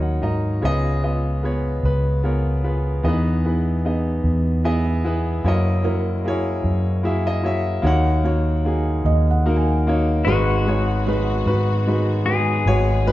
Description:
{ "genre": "acoustic folk-pop ballad", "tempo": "50 BPM (dotted quarters)", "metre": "6/8", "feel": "straight", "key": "G# minor", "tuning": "A4 = 438 Hz", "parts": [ { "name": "warm grand piano", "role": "melody", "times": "0.0-13.1 s", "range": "F#1 to A#5", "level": "-22 LUFS", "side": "left 1 dB", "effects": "none" }, { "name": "fingered electric bass", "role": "bass", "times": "0.0-13.1 s", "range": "G#1 to G#2", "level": "-20 LUFS", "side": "equal", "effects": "none" }, { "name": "felt-muted upright piano", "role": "arpeggios", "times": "5.8-13.1 s", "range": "F#4 to G#5", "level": "-30 LUFS", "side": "right 4 dB", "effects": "none" }, { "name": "pedal steel guitar", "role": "second line", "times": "10.2-13.1 s", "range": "F#4 to G#4", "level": "-25 LUFS", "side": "left 5 dB", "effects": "none" }, { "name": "dark chamber string section", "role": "sustained chords", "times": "10.3-13.1 s", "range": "D#3 to G#4", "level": "-30 LUFS", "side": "equal", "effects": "none" } ], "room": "moderate recital hall reverb, RT60 1.5 s", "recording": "recorded in a church or concert hall, nothing above 7.9 kHz", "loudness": "-18 LUFS", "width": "side -15 dB against mid", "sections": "0.6-10.3 A section; 10.3-13.1 B section", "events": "grand piano fill 0.0-0.6, 4.2-5.4", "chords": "0.0 D#m7; 0.6 C#7; 3.0 Emaj7; 5.4 F#7; 7.8 D#m7; 10.3 G#m7", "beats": "| 0.64 1.84 | 3.04 4.24 | 5.44 6.64 | 7.85 9.05 | 10.26 11.46 | 12.66" }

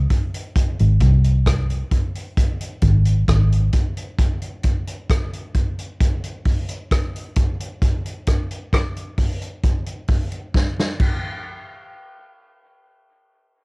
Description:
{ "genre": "dub reggae", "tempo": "66 BPM", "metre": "4/4", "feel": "straight", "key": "unclear", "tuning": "A4 = 439 Hz", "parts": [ { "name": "vintage muted fingered electric bass", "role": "bass", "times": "0.0-3.7 s", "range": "G#1 to B#1", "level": "-15 LUFS", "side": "equal", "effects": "none" }, { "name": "vintage drum kit", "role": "drums", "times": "0.1-11.2 s", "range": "crash cymbal, hi-hat, kick drum, rim click, snare drum", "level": "-20 LUFS", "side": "equal", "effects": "cassette tape" } ], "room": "little or no reverb", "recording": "home recording on cassette", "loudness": "-18 LUFS", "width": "side -32 dB against mid", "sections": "0.0-11.5 A section; 11.5-13.6 B section", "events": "drum fill 10.5-11.5", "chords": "none", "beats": "| 0.56 1.46 2.37 3.28 | 4.18 5.09 6.00 6.91 | 7.82 8.73 9.64 10.55" }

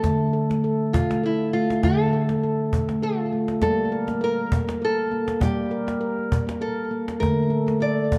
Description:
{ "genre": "world meditative, meditative tuned percussion", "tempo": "100 BPM", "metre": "3/4", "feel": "swing 55% on 16ths", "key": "D minor", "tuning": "A4 = 440 Hz", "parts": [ { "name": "nylon-string guitar", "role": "melody", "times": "0.0-8.2 s", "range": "E4 to D5", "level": "-29 LUFS", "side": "equal", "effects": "tape echo" }, { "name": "handpan", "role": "arpeggios", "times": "0.0-8.2 s", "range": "D3 to Bb4", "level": "-25 LUFS", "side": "equal", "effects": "tape echo" }, { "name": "cajon", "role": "percussion", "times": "0.0-8.2 s", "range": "none", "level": "-28 LUFS", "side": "equal", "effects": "none" } ], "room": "wet echo chamber reverb, RT60 1.7 s, small room ambience", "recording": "dark, warm production", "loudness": "-23 LUFS", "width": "mono", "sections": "0.0-8.2 A section", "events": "none", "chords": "0.0 Dm; 3.6 Gm; 7.2 D5", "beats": "| 0.04 0.64 1.24 | 1.84 2.44 3.03 | 3.63 4.23 4.82 | 5.42 6.02 6.62 | 7.21 7.81" }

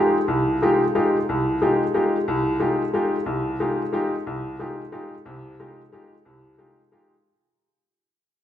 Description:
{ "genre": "jazz", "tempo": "181 BPM", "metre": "3/4", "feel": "swing 62% on 8ths", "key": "F minor", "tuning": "A4 = 441 Hz", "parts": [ { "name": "bright upright piano", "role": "solo", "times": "0.0-7.1 s", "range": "C2 to G4", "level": "-20 LUFS", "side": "left 1 dB", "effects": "none" } ], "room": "wet recital hall reverb, RT60 1.7 s", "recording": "recorded in a church or concert hall, nothing above 10.7 kHz", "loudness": "-20 LUFS", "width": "side -11 dB against mid", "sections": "0.0-7.2 A section", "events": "fade-out 0.0-7.2", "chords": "0.0 Fm9", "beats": "| 0.27 0.60 0.93 | 1.27 1.60 1.93 | 2.26 2.59 2.93 | 3.26 3.59 3.92 | 4.25 4.59 4.92 | 5.25 5.58 5.91 | 6.25 6.58 6.91" }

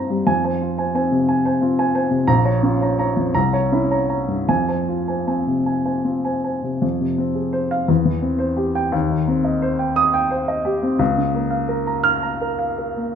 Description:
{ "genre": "classical, romantic character piece for solo piano", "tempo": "50-60 BPM (dotted quarters)", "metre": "6/8", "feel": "rubato", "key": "F minor", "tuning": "A4 = 440 Hz", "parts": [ { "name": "dark baby grand piano", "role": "solo", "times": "0.0-13.2 s", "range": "Bb1 to F6", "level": "-17 LUFS", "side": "equal", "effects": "none" } ], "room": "wet stone room reverb, RT60 1.1 s", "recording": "none", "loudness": "-17 LUFS", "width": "side -8 dB against mid", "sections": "0.0-6.8 A section; 6.8-13.2 A section", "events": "none", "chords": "0.3 Fm; 2.3 Bbm; 3.4 C7b9; 4.5 Fm; 7.9 C/E; 8.9 Cm/Eb; 11.0 Bbm/Db", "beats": "| 0.28 1.29 | 2.29 3.36 | 4.49 5.66 | 6.83 7.90 | 8.94 9.97 | 11.00 12.05" }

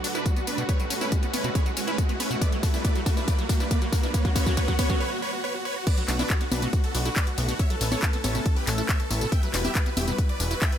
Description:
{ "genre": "uplifting trance", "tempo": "139 BPM", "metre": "4/4", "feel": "straight", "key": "B minor", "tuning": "A4 = 440 Hz", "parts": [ { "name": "big supersaw lead", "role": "melody", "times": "0.0-10.8 s", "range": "C#4 to G5", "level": "-31 LUFS", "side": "right 1 dB", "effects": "sidechain pumping, ping-pong delay" }, { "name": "liquid acid bass", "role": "arpeggios", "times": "0.0-10.5 s", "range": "B2 to E4", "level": "-36 LUFS", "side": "right 2 dB", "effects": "chorus, vintage 12-bit sampler grit, sidechain pumping, digital delay" }, { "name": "house drum kit", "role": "drums", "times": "0.0-10.8 s", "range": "congas, crash cymbal, handclaps, hi-hat, tambourine", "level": "-31 LUFS", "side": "left 2 dB", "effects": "high-pass filter on hats, high-pass filter on perc, high-pass filter on cymbals, high-pass filter on snare" }, { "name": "riser", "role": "sound effects", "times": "0.0-5.0 s", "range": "none", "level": "-34 LUFS", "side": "right 2 dB", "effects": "none" }, { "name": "electronic kick drum", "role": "drums", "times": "0.3-10.7 s", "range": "none", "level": "-24 LUFS", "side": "equal", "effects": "none" }, { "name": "plucky analog bass", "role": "bass", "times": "6.1-10.5 s", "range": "E1 to B1", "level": "-27 LUFS", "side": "equal", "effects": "sidechain pumping" } ], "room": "digital ambience", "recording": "none", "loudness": "-23 LUFS", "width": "side -10 dB against mid", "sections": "0.0-5.9 A section; 5.9-10.8 B section", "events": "build-up 0.0-5.9; drum fill 0.0-5.0; riser 0.0-5.0; break 5.0-5.9; drop 5.9-10.8", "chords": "0.0 Bm7; 0.7 Aadd9; 2.4 Emadd9; 4.1 F#m; 5.9 Bm7; 7.6 Aadd9; 9.3 Emadd9", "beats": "0.26 | 0.69 1.12 1.55 1.98 | 2.41 2.85 3.28 3.71 | 4.14 4.57 5.00 5.44 | 5.87 6.30 6.73 7.16 | 7.59 8.03 8.46 8.89 | 9.32 9.75 10.18 10.62" }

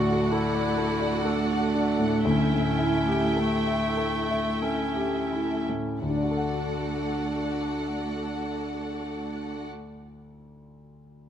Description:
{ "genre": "classical, romantic movement for piano and orchestra", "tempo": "41-67 BPM", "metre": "3/4", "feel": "rubato", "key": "D major", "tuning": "A4 = 440 Hz", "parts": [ { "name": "clear concert grand piano", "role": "melody", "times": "0.0-11.3 s", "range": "D2 to F#5", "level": "-28 LUFS", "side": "left 1 dB", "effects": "none" }, { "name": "rich symphonic violin section", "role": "melody", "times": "0.0-9.7 s", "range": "F#5 to G5", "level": "-37 LUFS", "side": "left 1 dB", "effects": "none" }, { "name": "clear clarinet", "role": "second line", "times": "0.0-9.7 s", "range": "A3 to F#4", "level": "-30 LUFS", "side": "right 1 dB", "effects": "none" }, { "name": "rich studio violin section", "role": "second line", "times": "0.0-9.7 s", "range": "A4 to E5", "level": "-35 LUFS", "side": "left 2 dB", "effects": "none" }, { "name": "rich studio viola section", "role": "accompaniment", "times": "0.0-9.7 s", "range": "A3 to F#4", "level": "-32 LUFS", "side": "right 4 dB", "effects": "none" } ], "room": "light reverb", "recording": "close, detailed microphones", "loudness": "-24 LUFS", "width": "side -9 dB against mid", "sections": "0.0-6.0 A section; 6.0-10.2 B section", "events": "slowing down 0.0-6.0", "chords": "0.0 D; 2.3 A7/D; 6.0 D", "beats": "0.31 1.25 | 2.27 3.37 4.61 | 6.01 7.38 8.78" }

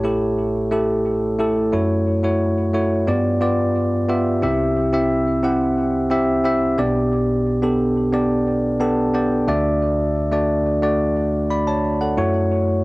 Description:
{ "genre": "pop", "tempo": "89 BPM", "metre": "4/4", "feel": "straight", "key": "unclear", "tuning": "A4 = 441 Hz", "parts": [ { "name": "bell-like tine electric piano", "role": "solo", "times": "0.0-12.8 s", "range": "A1 to B5", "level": "-17 LUFS", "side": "equal", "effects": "cassette tape, tape echo" } ], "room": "wet booth ambience, RT60 0.2 s", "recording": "home recording on cassette", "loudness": "-17 LUFS", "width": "side -22 dB against mid", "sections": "0.0-4.4 A section; 4.4-12.8 B section", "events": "tine electric piano fill 8.5-9.8", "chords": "0.0 A7; 1.7 F#m7; 3.1 G7; 4.4 C; 6.8 G/B; 9.5 D; 12.2 F#m7", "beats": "0.38 1.05 | 1.73 2.40 3.08 3.75 | 4.42 5.10 5.77 6.45 | 7.12 7.79 8.47 9.14 | 9.82 10.49 11.17 11.84 | 12.51" }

